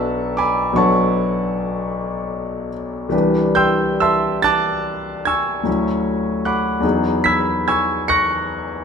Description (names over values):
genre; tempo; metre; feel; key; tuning
classical, impressionist solo piano; 44-52 BPM (dotted quarters); 9/8; rubato; unclear; A4 = 440 Hz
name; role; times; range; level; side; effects
clear concert grand piano; solo; 0.0-8.8 s; B1 to C#7; -16 LUFS; equal; none
room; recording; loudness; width
wet stone room reverb, RT60 1.2 s; none; -16 LUFS; side -6 dB against mid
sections
0.0-8.8 A section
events
none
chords
0.0 Bm9; 3.1 Cmaj9; 5.7 Dmaj9; 6.8 Emaj9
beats
0.77 1.94 | 3.13 4.45 5.67 | 6.84 8.09